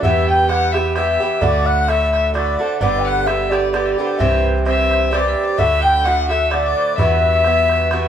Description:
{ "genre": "celtic folk, Celtic waltz", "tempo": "130 BPM", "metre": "3/4", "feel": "swing 54% on 8ths", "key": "E minor", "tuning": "A4 = 439 Hz", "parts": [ { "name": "baroque flute", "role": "melody", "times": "0.0-7.9 s", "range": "D5 to G5", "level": "-18 LUFS", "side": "left 1 dB", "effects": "none" }, { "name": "clear fiddle", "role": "second line", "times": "0.0-8.1 s", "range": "C5 to G5", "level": "-22 LUFS", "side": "left 4 dB", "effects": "none" }, { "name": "Irish bouzouki", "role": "accompaniment", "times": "0.0-8.1 s", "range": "G2 to G4", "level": "-20 LUFS", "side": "right 4 dB", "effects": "none" }, { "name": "metallic FM bass", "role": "bass", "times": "0.0-8.1 s", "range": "G1 to E2", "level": "-21 LUFS", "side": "left 1 dB", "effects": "none" }, { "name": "bodhran", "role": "percussion", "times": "0.0-8.0 s", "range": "none", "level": "-25 LUFS", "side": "right 2 dB", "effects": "none" } ], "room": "moderate large studio reverb, RT60 0.9 s", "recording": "band playing live in one room", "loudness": "-14 LUFS", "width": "side -9 dB against mid", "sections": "0.0-8.1 A section", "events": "none", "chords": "0.0 Em; 1.4 D; 2.8 G; 4.2 C; 5.6 D; 7.0 Emadd9" }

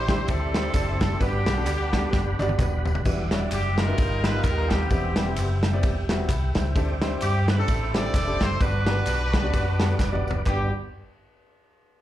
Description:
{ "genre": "uptempo gospel", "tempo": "130 BPM", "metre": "4/4", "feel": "swing 57% on 8ths", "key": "G major", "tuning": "A4 = 441 Hz", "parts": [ { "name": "clear horn section", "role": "melody", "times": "0.0-10.7 s", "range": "B3 to D5", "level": "-29 LUFS", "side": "equal", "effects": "slapback echo" }, { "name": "warm upright piano", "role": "accompaniment", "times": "0.0-10.7 s", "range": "G2 to B5", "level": "-31 LUFS", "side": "left 1 dB", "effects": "slapback echo" }, { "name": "tonewheel organ", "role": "sustained chords", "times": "0.0-10.7 s", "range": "G3 to D#6", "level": "-34 LUFS", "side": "right 3 dB", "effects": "slow rotary speaker, chorus vibrato" }, { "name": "fingered electric bass", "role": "bass", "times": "0.0-10.7 s", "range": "Eb1 to G2", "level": "-26 LUFS", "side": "equal", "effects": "none" }, { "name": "natural country drum kit", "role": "drums", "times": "0.1-10.6 s", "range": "crash cymbal, kick drum, ride cymbal, snare drum, toms", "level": "-26 LUFS", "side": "equal", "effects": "none" }, { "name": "tambourine and handclaps", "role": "percussion", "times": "0.1-10.7 s", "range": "none", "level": "-42 LUFS", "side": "right 2 dB", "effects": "slapback echo" } ], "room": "little or no reverb", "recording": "live gig heard through the venue's PA, club reverb", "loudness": "-21 LUFS", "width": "side -13 dB against mid", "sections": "0.0-3.1 A section; 3.1-10.5 B section; 10.5-12.0 C section", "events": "drum fill 2.1-3.1, 10.0-10.5", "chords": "0.0 D9sus4; 1.2 Gmaj7; 3.1 Em9; 4.0 G7alt; 4.9 Cmaj7/E; 6.8 D9sus4; 8.6 Gmaj7" }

